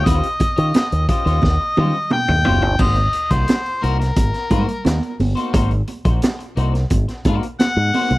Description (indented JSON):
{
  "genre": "funk",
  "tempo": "88 BPM",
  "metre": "4/4",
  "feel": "straight",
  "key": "unclear",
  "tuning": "A4 = 438 Hz",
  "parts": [
    { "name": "warm harmonica", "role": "melody", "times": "0.0-8.2 s", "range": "Bb4 to G5", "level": "-21 LUFS", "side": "left 1 dB", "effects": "none" },
    { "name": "clean electric guitar", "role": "accompaniment", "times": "0.0-8.1 s", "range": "Bb3 to Eb5", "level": "-26 LUFS", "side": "left 4 dB", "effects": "analog chorus" },
    { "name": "fingered electric bass with an envelope filter", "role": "bass", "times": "0.0-8.2 s", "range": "Gb1 to Eb3", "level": "-18 LUFS", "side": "equal", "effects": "none" },
    { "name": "raw garage drum kit", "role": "drums", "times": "0.1-8.2 s", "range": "crash cymbal, hi-hat, kick drum, snare drum, toms", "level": "-20 LUFS", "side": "equal", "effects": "none" },
    { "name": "congas", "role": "percussion", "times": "0.1-8.1 s", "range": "none", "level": "-24 LUFS", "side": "right 4 dB", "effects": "none" }
  ],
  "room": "small room ambience",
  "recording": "dry, close 1970s-style studio recording, vinyl crackle",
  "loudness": "-16 LUFS",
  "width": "side -19 dB against mid",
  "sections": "0.0-2.8 A section; 2.8-8.2 B section",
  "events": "drum fill 1.4-2.8",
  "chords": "0.0 Eb13; 2.8 Ab9"
}